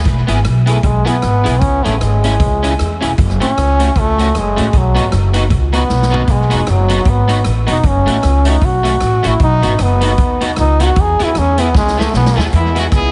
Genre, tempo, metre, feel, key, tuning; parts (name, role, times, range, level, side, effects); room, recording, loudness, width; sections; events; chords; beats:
ska; 154 BPM; 4/4; swing 58% on 8ths; E major; A4 = 440 Hz
clear horn section; melody; 0.0, 12.5-13.1 s; G#3 to G#4; -24 LUFS; equal; tape echo
upright bass; bass; 0.0-13.1 s; E1 to E2; -17 LUFS; equal
swinging big-band drum kit; drums; 0.1-13.0 s; hi-hat, kick drum, rim click, snare drum, toms; -21 LUFS; equal; tape echo
electric guitar at the edge of break-up; accompaniment; 0.3-13.0 s; A3 to G#4; -22 LUFS; equal; ensemble chorus, tape echo
clear trombone; melody; 0.7-12.5 s; F#3 to G#4; -19 LUFS; equal; tape echo
light reverb, studio reverb; heavily compressed radio sound, nothing above 10.6 kHz; -13 LUFS; mono
0.1-12.5 A section
trombone solo 0.1-12.5; drum fill 5.9-6.3, 11.7-12.5
0.1 E; 1.6 C#m; 3.2 F#m; 4.7 B; 7.8 F#m; 9.4 B; 11.0 E
| 0.06 0.45 0.84 1.23 | 1.62 2.00 2.39 2.78 | 3.17 3.56 3.95 4.34 | 4.73 5.12 5.50 5.89 | 6.28 6.67 7.06 7.45 | 7.84 8.23 8.62 9.01 | 9.40 9.79 10.18 10.57 | 10.96 11.35 11.74 12.13 | 12.53 12.92